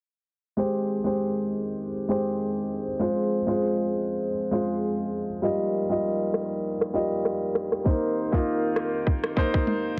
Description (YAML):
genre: dancehall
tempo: 99 BPM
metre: 4/4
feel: swing 56% on 16ths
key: Ab major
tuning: A4 = 440 Hz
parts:
  - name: clear grand piano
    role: accompaniment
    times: 0.6-10.0 s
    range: G3 to Eb5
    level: -28 LUFS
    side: equal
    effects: none
  - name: dark French horn section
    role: sustained chords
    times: 0.6-10.0 s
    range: Eb3 to C5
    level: -34 LUFS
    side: equal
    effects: sidechain pumping
  - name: island pop drum kit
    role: drums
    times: 6.3-9.8 s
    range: kick drum, rim click, toms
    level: -28 LUFS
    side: equal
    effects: overdrive
room: light reverb, studio ambience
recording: low-pass filter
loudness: -26 LUFS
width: mono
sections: 0.6-10.0 A section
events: filter sweep 0.6-10.0; drum fill 9.7-10.0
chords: 0.6 Abmaj7; 3.0 Fm; 5.4 Ebadd9; 7.9 Cm7